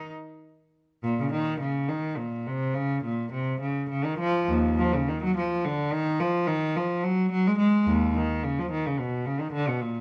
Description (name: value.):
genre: classical, baroque-style suite movement for unaccompanied cello.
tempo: 71 BPM (dotted quarters).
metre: 6/8.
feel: rubato.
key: unclear.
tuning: A4 = 442 Hz.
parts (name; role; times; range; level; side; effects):
rich cello; solo; 0.0-10.0 s; Eb2 to Eb4; -27 LUFS; equal; none.
room: moderate stone room reverb, RT60 1.0 s.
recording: dark, warm production.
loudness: -27 LUFS.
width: mono.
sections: 0.0-1.0 A section; 1.0-10.0 A section.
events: none.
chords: none.